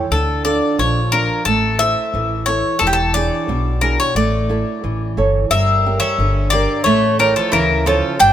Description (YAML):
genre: greek folk, Greek bouzouki band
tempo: 89 BPM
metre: 2/4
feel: straight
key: unclear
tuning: A4 = 439 Hz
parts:
  - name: flamenco guitar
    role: accompaniment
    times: 0.0-8.3 s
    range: B2 to E5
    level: -20 LUFS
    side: right 4 dB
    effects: none
  - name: upright bass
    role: bass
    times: 0.0-8.3 s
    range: E1 to D2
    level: -20 LUFS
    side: left 1 dB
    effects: none
  - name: Greek bouzouki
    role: melody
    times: 0.1-8.3 s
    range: G4 to G5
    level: -17 LUFS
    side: left 2 dB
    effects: none
  - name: Greek bouzouki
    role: second line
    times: 5.5-8.3 s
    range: E3 to D4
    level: -23 LUFS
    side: right 1 dB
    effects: none
room: light reverb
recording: none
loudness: -14 LUFS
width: side -10 dB against mid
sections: 0.0-5.5 A section; 5.5-8.3 B section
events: none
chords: 0.1 Dm; 1.5 Am; 2.8 E7; 4.2 A; 5.5 Gm; 6.9 A